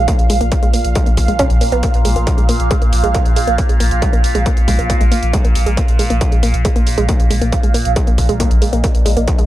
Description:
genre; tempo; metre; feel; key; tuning
driving peak-time techno; 137 BPM; 4/4; straight; unclear; A4 = 440 Hz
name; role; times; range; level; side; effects
analog pluck; riff; 0.0-9.4 s; Ab3 to Db4; -21 LUFS; right 1 dB; chorus, sidechain pumping, tape echo
warm sub bass; bass; 0.0-9.5 s; Bb1; -18 LUFS; equal; tube saturation, sidechain pumping, low-pass filter
overtone-sweeping drone; drone; 0.0-9.5 s; Bb2; -24 LUFS; equal; chorus, built-in reverb, sidechain pumping
ethereal airy pad; texture; 0.0-9.5 s; Eb5 to F5; -23 LUFS; right 4 dB; ensemble chorus, built-in reverb, phaser, sidechain pumping
electronic hi-hat; drums; 0.1-9.5 s; none; -26 LUFS; equal; none
electronic kick drum; drums; 0.1-9.4 s; none; -15 LUFS; equal; distortion
room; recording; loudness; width
little or no reverb; dry, gritty hardware recording, transformer saturation; -12 LUFS; side -14 dB against mid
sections
0.0-9.5 A section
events
filter sweep on synth arpeggio sound 0.0-9.5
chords
0.0 Bb5

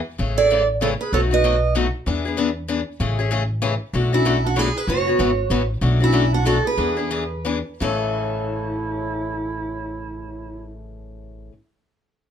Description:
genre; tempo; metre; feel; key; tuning
acoustic string swing (jazz manouche); 163-192 BPM; 3/4; swing 61% on 8ths; A major; A4 = 436 Hz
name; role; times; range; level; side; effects
picked acoustic archtop guitar; accompaniment; 0.2-11.5 s; A2 to G#4; -24 LUFS; left 5 dB; none
upright bass; bass; 0.2-11.5 s; F#1 to E2; -24 LUFS; equal; none
picked steel-string acoustic guitar; melody; 0.4-1.7, 4.1-11.5 s; E4 to D#5; -23 LUFS; right 5 dB; none
breathy clarinet; second line; 0.4-1.7, 4.1-10.8 s; C#4 to B4; -28 LUFS; right 5 dB; none
room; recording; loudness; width
moderate studio ambience, RT60 0.5 s; lossy compression artefacts; -18 LUFS; side -8 dB against mid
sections
0.0-3.9 A section; 3.9-7.8 B section; 7.8-10.0 C section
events
slowing down 5.8-7.8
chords
0.2 Amaj7; 1.1 B7; 2.1 E7; 3.0 Amaj7; 3.9 Bm11; 4.9 F#7sus4; 5.8 Bm11; 6.8 E7; 7.8 A

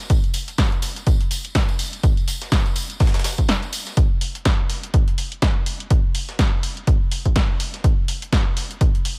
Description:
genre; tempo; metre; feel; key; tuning
house; 124 BPM; 4/4; swing 57% on 16ths; none; none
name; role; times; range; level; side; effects
breakbeat sampler-style drum kit; drums; 0.0-9.2 s; hi-hat, snare drum; -37 LUFS; equal; overdrive, sidechain pumping on hats, high-pass filter on hats, high-pass filter on snare, high-pass filter on room
punchy analog drum machine; drums; 0.0-9.2 s; hi-hat, snare drum; -28 LUFS; equal; none
tambourine; percussion; 0.0-3.9 s; none; -35 LUFS; equal; none
electronic kick drum; drums; 0.1-8.9 s; none; -21 LUFS; equal; none
room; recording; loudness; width
little or no reverb; none; -21 LUFS; mono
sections
0.0-4.0 A section; 4.0-9.2 A section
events
drop 0.0-4.0, 4.0-9.2; break 3.5-4.0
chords
none

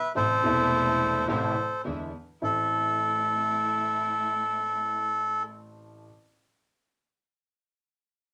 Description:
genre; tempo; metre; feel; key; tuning
tango; 107 BPM; 4/4; rubato; A minor; A4 = 436 Hz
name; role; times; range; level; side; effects
bandoneon; melody; 0.0-5.4 s; A4 to E5; -27 LUFS; equal; none
warm concert grand piano; accompaniment; 0.1-6.1 s; E1 to E4; -36 LUFS; equal; none
clear studio string section; stabs; 0.2-5.4 s; G#3 to E4; -41 LUFS; equal; none
bright double bass; bass; 0.2-2.7 s; E1 to E2; -38 LUFS; equal; none
room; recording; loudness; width
moderate small room reverb, RT60 0.6 s; none; -27 LUFS; mono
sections
0.0-2.4 A section; 2.4-4.7 B section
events
none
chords
0.2 Am; 1.9 E7; 2.4 Am

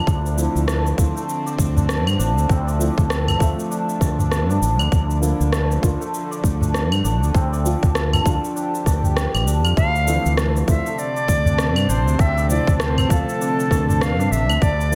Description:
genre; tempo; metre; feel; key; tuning
organic downtempo; 99 BPM; 4/4; swing 59% on 16ths; D minor; A4 = 440 Hz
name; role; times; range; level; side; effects
felt-muted upright piano; accompaniment; 0.0-14.9 s; E3 to F5; -30 LUFS; equal; sidechain pumping, delay, slapback echo
bowed-like drone; sustained chords; 0.0-14.9 s; C3 to G4; -31 LUFS; equal; built-in reverb, sidechain pumping
santur; arpeggios; 0.0-14.9 s; A3 to D5; -30 LUFS; equal; delay, slapback echo
fretless electric bass; bass; 0.1-14.9 s; A1 to G2; -23 LUFS; equal; sidechain pumping
electronic kick drum; drums; 0.1-14.8 s; none; -22 LUFS; equal; overdrive
electronic shaker, rim click and claves; drums; 0.1-14.9 s; none; -28 LUFS; equal; overdrive
udu; percussion; 1.8-14.0 s; none; -26 LUFS; equal; none
bright Native American-style cedar flute; melody; 9.8-14.9 s; A4 to F5; -26 LUFS; equal; delay
room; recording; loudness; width
moderate lush hall reverb, RT60 1.6 s, small room reverb; big arena sound; -19 LUFS; mono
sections
0.0-14.9 A section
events
none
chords
0.1 Dm7; 4.9 Bb; 9.8 Dm7

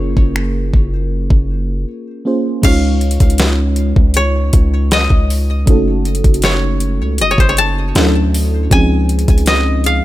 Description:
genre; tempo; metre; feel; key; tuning
contemporary R&B; 79 BPM; 4/4; straight; Db major; A4 = 440 Hz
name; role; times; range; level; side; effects
koto; melody; 0.0-10.0 s; C5 to A5; -18 LUFS; left 2 dB; digital delay
mellow FM electric piano; accompaniment; 0.0-10.0 s; F3 to Db5; -19 LUFS; right 1 dB; chorus
long sustained 808-style bass; bass; 0.0-10.0 s; Gb1 to D2; -15 LUFS; equal; none
smooth R&B drum kit; drums; 0.2-10.0 s; crash cymbal, finger snaps, hi-hat, kick drum, snare drum; -13 LUFS; equal; none
room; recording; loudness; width
digital ambience; none; -11 LUFS; side -15 dB against mid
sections
0.0-2.6 A section; 2.6-10.0 B section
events
break 1.9-2.6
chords
0.0 Gbmaj9#11; 2.6 Db; 5.7 Gbm6; 8.0 Dmaj7; 8.7 Dbmaj7

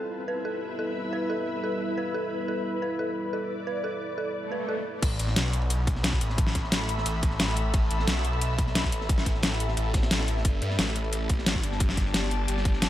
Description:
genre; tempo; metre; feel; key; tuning
dark technical drum and bass; 177 BPM; 4/4; straight; unclear; A4 = 437 Hz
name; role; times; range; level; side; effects
dark analog pad; sustained chords; 0.0-5.0 s; G3 to B4; -35 LUFS; equal; chorus, sidechain pumping
dark detuned synth bell; arpeggios; 0.0-4.8 s; A4 to B4; -33 LUFS; right 2 dB; chorus, sidechain pumping, tape echo
ethereal airy pad; texture; 0.0-12.9 s; E4 to B5; -33 LUFS; left 1 dB; ensemble chorus, built-in reverb, sidechain pumping
swell; sound effects; 4.4-5.0 s; none; -37 LUFS; right 2 dB; none
phased detuned saw bass; bass; 5.0-12.9 s; G1 to G2; -28 LUFS; equal; phaser, overdrive
crunchy breakbeat drum kit; drums; 5.0-12.9 s; ride cymbal, snare drum; -38 LUFS; equal; none
dubstep drum kit; drums; 5.0-12.9 s; crash cymbal, hi-hat, snare drum; -28 LUFS; left 1 dB; overdrive
electronic kick drum; drums; 5.0-12.7 s; none; -26 LUFS; equal; none
room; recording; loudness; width
light reverb; none; -25 LUFS; side -13 dB against mid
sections
0.0-5.0 A section; 5.0-12.9 B section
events
swell 4.4-5.0; drop 5.0-12.9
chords
0.0 Em; 5.0 A5; 10.4 G

